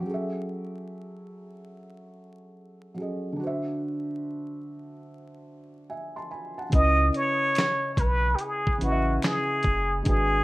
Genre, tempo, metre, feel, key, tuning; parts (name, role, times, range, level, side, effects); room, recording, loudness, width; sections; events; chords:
lo-fi hip hop; 72 BPM; 4/4; swing 65% on 16ths; C# minor; A4 = 438 Hz
felt-muted upright piano; accompaniment; 0.0-10.4 s; C#3 to C6; -32 LUFS; right 1 dB
trumpet with plunger mute; melody; 6.7-10.4 s; F#4 to D#5; -24 LUFS; equal; plate reverb
saturated sub bass; bass; 6.7-10.4 s; F#1 to C#2; -25 LUFS; equal
dusty soul sampler-style drum kit; drums; 6.7-10.3 s; handclaps, hi-hat, kick drum, snare drum; -25 LUFS; equal
finger snap; percussion; 7.6-9.5 s; -41 LUFS; left 5 dB
moderate studio reverb, RT60 0.6 s; rough home demo mix, vinyl crackle; -24 LUFS; side -20 dB against mid
0.0-6.7 A section; 6.7-10.4 B section
0.1 F#m9; 3.4 D9; 6.7 C#m9